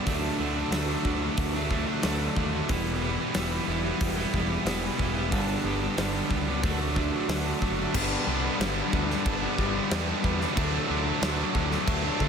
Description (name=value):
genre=quiet-loud alternative rock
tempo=91 BPM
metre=4/4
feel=straight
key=G major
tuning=A4 = 441 Hz
part: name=twelve-string electric guitar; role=arpeggios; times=0.0-7.9 s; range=E2 to G4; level=-31 LUFS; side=right 3 dB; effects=lush chorus
part: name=thick fuzz guitar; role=riff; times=0.0-12.3 s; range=G2 to E4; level=-32 LUFS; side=left 15 dB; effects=distortion
part: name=tight distorted guitar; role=riff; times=0.0-12.3 s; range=G2 to E4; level=-31 LUFS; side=right 15 dB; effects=distortion
part: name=growling picked electric bass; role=bass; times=0.1-12.3 s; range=E1 to D3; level=-32 LUFS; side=equal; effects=overdrive
part: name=huge arena drum kit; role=drums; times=0.1-12.3 s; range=crash cymbal, hi-hat, kick drum, snare drum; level=-31 LUFS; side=equal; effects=none
part: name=distorted electric guitar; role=riff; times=7.9-12.3 s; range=G2 to D4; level=-32 LUFS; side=equal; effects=overdrive
room=light reverb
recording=none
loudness=-25 LUFS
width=side -6 dB against mid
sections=0.0-8.0 A section; 8.0-12.3 B section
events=none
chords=0.1 D; 2.7 Em; 5.3 G; 6.6 D; 8.0 G; 10.6 D